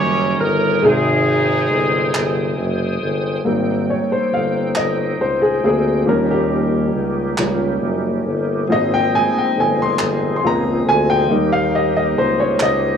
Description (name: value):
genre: slow gospel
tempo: 46 BPM (dotted quarters)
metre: 6/8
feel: straight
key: Ab major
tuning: A4 = 440 Hz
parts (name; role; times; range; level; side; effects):
- warm horn section; melody; 0.0-2.6 s; C4 to Db5; -19 LUFS; equal; cassette tape, tape echo
- warm upright piano; accompaniment; 0.0-13.0 s; C3 to C6; -18 LUFS; left 1 dB; cassette tape
- bright tonewheel organ; sustained chords; 0.0-13.0 s; F3 to Eb6; -26 LUFS; right 2 dB; fast rotary speaker, overdrive, chorus vibrato, cassette tape
- warm tuba; bass; 0.0-13.0 s; Gb1 to Eb2; -21 LUFS; left 1 dB; none
- group handclap; percussion; 2.1-13.0 s; none; -25 LUFS; right 3 dB; none
room: light reverb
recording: home recording on cassette, small room ambience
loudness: -15 LUFS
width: side -7 dB against mid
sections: 0.0-3.5 A section; 3.5-13.0 B section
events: upright piano solo 3.5-13.0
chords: 0.0 Eb7; 0.8 Abmaj7; 6.1 Eb7; 8.7 Ab6; 11.3 Eb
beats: | 0.83 2.14 | 3.45 4.76 | 6.07 7.38 | 8.69 9.99 | 11.30 12.61